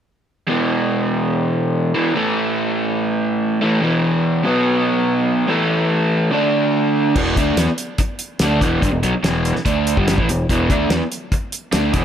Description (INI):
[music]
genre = classic rock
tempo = 144 BPM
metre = 4/4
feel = straight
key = unclear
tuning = A4 = 439 Hz
[part]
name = raw garage guitar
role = riff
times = 0.5-12.0 s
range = E2 to D4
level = -16 LUFS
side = equal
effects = overdrive
[part]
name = growling fingered electric bass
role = bass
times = 7.2-12.0 s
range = E1 to E2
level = -22 LUFS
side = equal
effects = overdrive
[part]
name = damped 70s drum kit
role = drums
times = 7.2-12.0 s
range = crash cymbal, hi-hat, kick drum, snare drum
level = -20 LUFS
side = equal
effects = none
[sound]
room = light reverb, small room ambience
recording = none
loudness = -16 LUFS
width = side -9 dB against mid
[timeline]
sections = 0.5-7.2 A section; 7.2-12.0 B section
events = none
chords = 0.5 E5; 2.1 A5; 3.8 E5; 4.4 B5; 5.5 A5; 6.3 D5; 7.2 E5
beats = | 0.47 0.89 1.31 1.72 | 2.14 2.56 2.98 3.40 | 3.81 4.23 4.65 5.07 | 5.49 5.90 6.32 6.74 | 7.15 7.57 7.99 8.40 | 8.82 9.24 9.65 10.07 | 10.49 10.90 11.32 11.74